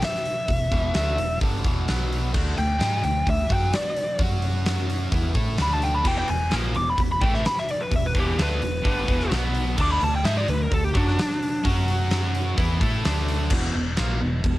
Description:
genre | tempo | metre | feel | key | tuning
hard rock | 129 BPM | 4/4 | straight | unclear | A4 = 440 Hz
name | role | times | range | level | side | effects
biting lead guitar | melody | 0.0-11.6 s | D4 to D6 | -26 LUFS | equal | overdrive, cassette tape, tape echo
huge arena drum kit | drums | 0.0-14.6 s | crash cymbal, hi-hat, kick drum, snare drum | -26 LUFS | equal | none
distorted electric guitar | riff | 0.5-14.6 s | E2 to A4 | -29 LUFS | equal | overdrive, cassette tape
hollow-body short-scale fingered electric bass | bass | 0.5-14.6 s | E1 to A2 | -26 LUFS | equal | none
distorted electric guitar | riff | 6.0-13.5 s | E2 to A4 | -30 LUFS | equal | overdrive, cassette tape
room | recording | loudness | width
little or no reverb | home recording on cassette | -21 LUFS | side -17 dB against mid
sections
0.0-13.5 A section; 13.5-14.6 B section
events
lead electric guitar solo 0.0-13.5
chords
0.0 E5; 1.9 B5; 2.3 D5; 4.2 F#5; 5.1 D5; 6.1 E5; 9.3 B5; 9.8 D5; 11.6 F#5; 12.6 D5; 13.5 E5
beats
0.02 | 0.49 0.95 1.41 1.88 | 2.34 2.81 3.27 3.73 | 4.20 4.66 5.13 5.59 | 6.05 6.52 6.99 7.45 | 7.92 8.38 8.85 9.31 | 9.78 10.25 10.71 11.18 | 11.65 12.11 12.58 13.05 | 13.51 13.98 14.45

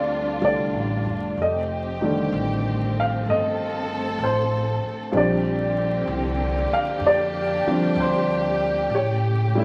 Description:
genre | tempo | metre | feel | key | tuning
jazz ballad | 64 BPM | 4/4 | swing 68% on 8ths | F major | A4 = 440 Hz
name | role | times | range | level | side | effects
warm upright piano | accompaniment | 0.0-9.6 s | D3 to F5 | -25 LUFS | equal | none
warm symphonic string section | sustained chords | 0.0-9.6 s | C#3 to A4 | -31 LUFS | equal | none
upright bass | bass | 0.0-9.6 s | F1 to A2 | -30 LUFS | equal | none
room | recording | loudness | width
wet club reverb, RT60 0.8 s | vinyl crackle | -23 LUFS | mono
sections
0.0-9.6 A section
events
none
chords
0.0 F69; 1.4 F13; 5.1 Bb69; 8.9 A7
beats
0.42 | 1.37 2.31 3.26 4.20 | 5.14 6.09 7.03 7.97 | 8.92

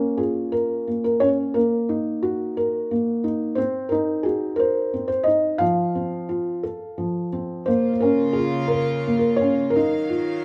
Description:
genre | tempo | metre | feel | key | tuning
children's music, lullaby | 58 BPM (dotted quarters) | 6/8 | rubato | Bb minor | A4 = 440 Hz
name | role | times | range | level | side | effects
felt-muted upright piano | melody | 0.0-10.4 s | F3 to F5 | -23 LUFS | equal | none
rich chamber string section | sustained chords | 7.7-10.4 s | Db3 to F5 | -32 LUFS | equal | none
room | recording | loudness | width
moderate large studio reverb, RT60 1.2 s | band playing live in one room | -22 LUFS | mono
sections
0.0-10.4 A section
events
none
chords
0.0 Bbm; 1.6 Ebm/Bb; 3.6 Cdim; 5.6 F5; 6.6 F; 7.7 Bbm; 9.8 Ebmadd9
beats
0.52 | 1.55 2.56 | 3.58 4.59 | 5.61 6.64 | 7.68 8.72 | 9.76

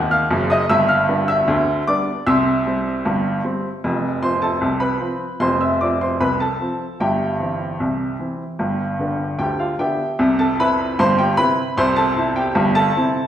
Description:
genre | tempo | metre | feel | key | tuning
ragtime piano | 76 BPM | 2/4 | straight | C major | A4 = 440 Hz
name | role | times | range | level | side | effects
clear upright piano | solo | 0.0-13.3 s | F1 to Gb6 | -17 LUFS | equal | none
room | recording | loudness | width
wet recital hall reverb, RT60 1.2 s | recorded in a church or concert hall | -17 LUFS | side -10 dB against mid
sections
0.0-10.2 A section; 10.2-13.3 B section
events
none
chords
0.0 Ab7(no3) (rootless); 0.7 G7; 2.3 C; 3.8 F; 7.0 C/G; 8.6 G; 10.2 C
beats
| 0.69 1.48 | 2.27 3.06 | 3.84 4.63 | 5.42 6.20 | 7.00 7.80 | 8.60 9.39 | 10.19 10.98 | 11.77 12.56

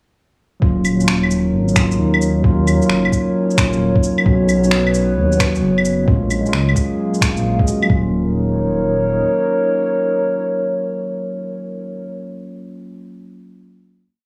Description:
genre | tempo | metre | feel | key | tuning
future garage | 132 BPM | 4/4 | swing 67% on 16ths | Eb minor | A4 = 439 Hz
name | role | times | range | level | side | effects
mellow tine electric piano | accompaniment | 0.6-14.0 s | Gb3 to Ab4 | -22 LUFS | equal | sidechain pumping, dub echo
dark analog pad | sustained chords | 0.6-12.1 s | Gb3 to F5 | -23 LUFS | equal | chorus, sidechain pumping
dark detuned saw bass | bass | 0.6-9.2 s | Eb1 to Eb2 | -22 LUFS | equal | none
electronic kick drum | drums | 0.6-8.0 s | none | -20 LUFS | equal | studio reverb
electronic shaker, claves and finger snaps | drums | 0.8-7.9 s | none | -23 LUFS | equal | studio reverb
room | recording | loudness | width
light reverb | studio reverb | -17 LUFS | mono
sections
0.6-7.9 groove; 7.9-11.5 final chord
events
none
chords
0.6 Ebm7; 4.3 Bsus2; 6.1 Gbmaj7/Bb; 7.9 Ebm7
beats
| 0.62 1.08 1.53 1.99 | 2.44 2.90 3.35 3.81 | 4.26 4.71 5.17 5.62 | 6.08 6.53 6.99 7.44 | 7.90 8.35 8.81 9.26 | 9.71 10.17 10.62 11.08

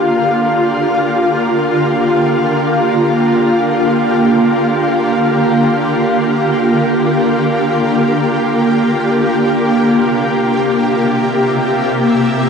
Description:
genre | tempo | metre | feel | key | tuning
ambient | free time | none | none | Bb lydian | A4 = 440 Hz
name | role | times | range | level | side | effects
shimmering ambient pad | sustained chords | 0.0-12.5 s | C3 to E5 | -12 LUFS | equal | chorus, built-in reverb
organ-like drone | drone | 0.0-12.5 s | Bb3 to F4 | -19 LUFS | right 2 dB | ensemble chorus, built-in reverb
room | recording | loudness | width
wet shimmer reverb, RT60 8.3 s | dark, warm production | -11 LUFS | side -6 dB against mid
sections
0.0-12.5 A section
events
none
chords
0.0 Bb6; 9.5 C7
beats
free time

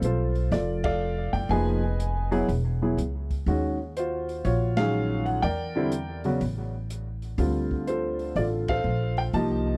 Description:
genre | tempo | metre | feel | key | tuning
jazz piano trio | 123 BPM | 4/4 | swing 66% on 8ths | unclear | A4 = 440 Hz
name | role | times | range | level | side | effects
warm upright piano | melody | 0.0-9.8 s | Db3 to A5 | -29 LUFS | equal | none
upright bass | bass | 0.0-9.8 s | E1 to E2 | -30 LUFS | equal | none
open jazz drum kit | drums | 0.0-9.5 s | hi-hat, kick drum, ride cymbal, snare drum | -36 LUFS | equal | none
room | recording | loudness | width
light reverb | dry, close 1970s-style studio recording | -27 LUFS | mono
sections
0.0-9.8 A section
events
band accent 0.8, 4.7, 8.6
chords
0.0 Bbmaj9 (rootless); 1.5 Fm7b5; 2.5 N.C.; 3.5 Ebm11; 5.4 Em7b5; 6.4 N.C.; 7.4 Dm7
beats
0.03 0.52 1.01 | 1.51 2.00 2.49 2.98 | 3.47 3.96 4.45 4.94 | 5.43 5.92 6.41 6.90 | 7.38 7.87 8.36 8.85 | 9.34

